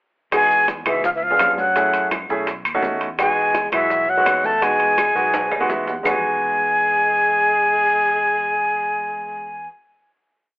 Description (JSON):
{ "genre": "Afro-Cuban jazz", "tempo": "168 BPM", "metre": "4/4", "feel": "straight", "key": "E major", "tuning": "A4 = 441 Hz", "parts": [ { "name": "breathy concert flute", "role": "melody", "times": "0.3-9.7 s", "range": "E5 to A5", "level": "-17 LUFS", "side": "equal", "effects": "plate reverb" }, { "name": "breathy tenor saxophone", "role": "second line", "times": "0.3-9.7 s", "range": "E3 to A3", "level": "-26 LUFS", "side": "left 1 dB", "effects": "none" }, { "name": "warm grand piano", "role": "accompaniment", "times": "0.3-9.7 s", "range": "G#3 to F#5", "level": "-24 LUFS", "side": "right 1 dB", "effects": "none" }, { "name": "fingered electric bass", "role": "bass", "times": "0.3-9.7 s", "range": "B1 to F#2", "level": "-40 LUFS", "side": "equal", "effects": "none" }, { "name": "bongos", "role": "percussion", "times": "0.3-6.1 s", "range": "none", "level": "-31 LUFS", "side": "left 2 dB", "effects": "none" }, { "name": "claves", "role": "percussion", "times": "0.3-6.1 s", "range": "none", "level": "-27 LUFS", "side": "left 1 dB", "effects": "none" }, { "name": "congas", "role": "percussion", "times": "0.3-6.1 s", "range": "none", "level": "-36 LUFS", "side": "equal", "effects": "none" }, { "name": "maracas", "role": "percussion", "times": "0.3-6.1 s", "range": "none", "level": "-43 LUFS", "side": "left 1 dB", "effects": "none" }, { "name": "timbales", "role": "percussion", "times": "0.3-6.1 s", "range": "none", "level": "-27 LUFS", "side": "right 2 dB", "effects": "none" } ], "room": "moderate club reverb, RT60 0.8 s", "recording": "telephone sound", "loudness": "-16 LUFS", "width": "side -23 dB against mid", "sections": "0.3-6.1 A section; 6.1-8.9 final chord", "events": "drum fill 5.3-6.1; grand piano fill 5.3-6.1", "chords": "0.3 Emaj9; 1.0 C#7b9; 1.8 F#m7; 2.5 B7; 3.2 Emaj9" }